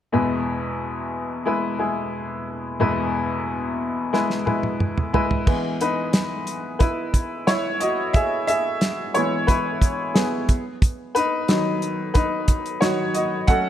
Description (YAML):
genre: piano-driven pop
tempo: 90 BPM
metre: 4/4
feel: straight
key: E major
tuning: A4 = 441 Hz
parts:
  - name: bright upright piano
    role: accompaniment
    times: 0.1-13.7 s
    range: E2 to F#5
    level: -22 LUFS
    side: left 1 dB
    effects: none
  - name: damped 70s drum kit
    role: drums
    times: 4.1-13.6 s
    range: crash cymbal, hi-hat, kick drum, snare drum, toms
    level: -21 LUFS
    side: right 1 dB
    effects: none
room: light reverb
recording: none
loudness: -20 LUFS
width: side -10 dB against mid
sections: 0.1-5.5 A section; 5.5-13.7 B section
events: drum fill 4.1-5.5; upright piano solo 5.5-13.7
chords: 0.1 E; 10.5 B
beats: | 0.12 0.79 1.46 2.13 | 2.79 3.46 4.13 4.80 | 5.47 6.14 6.80 7.47 | 8.14 8.81 9.48 10.14 | 10.81 11.48 12.15 12.81 | 13.48